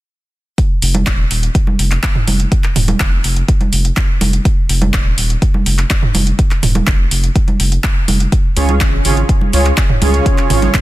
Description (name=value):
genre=progressive house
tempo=124 BPM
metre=4/4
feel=straight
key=unclear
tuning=A4 = 440 Hz
part: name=deep house drum kit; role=drums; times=0.6-10.8 s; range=handclaps, hi-hat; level=-20 LUFS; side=equal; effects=none
part: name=electronic kick drum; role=drums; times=0.6-10.8 s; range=none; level=-14 LUFS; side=equal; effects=none
part: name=saturated sub bass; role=bass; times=0.8-10.8 s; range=Eb1 to Db2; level=-15 LUFS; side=equal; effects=sidechain pumping
part: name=electronic congas and toms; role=percussion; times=0.9-10.7 s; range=none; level=-20 LUFS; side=right 3 dB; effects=sidechain pumping on perc, sidechain pumping on toms
part: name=soft supersaw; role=stabs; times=8.6-10.7 s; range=Db3 to Db5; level=-16 LUFS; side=right 3 dB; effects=sidechain pumping, tape echo
room=digital ambience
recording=dense, heavily limited modern master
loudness=-11 LUFS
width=side -16 dB against mid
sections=0.6-10.8 A section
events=none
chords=0.6 Ebsus2; 8.3 Db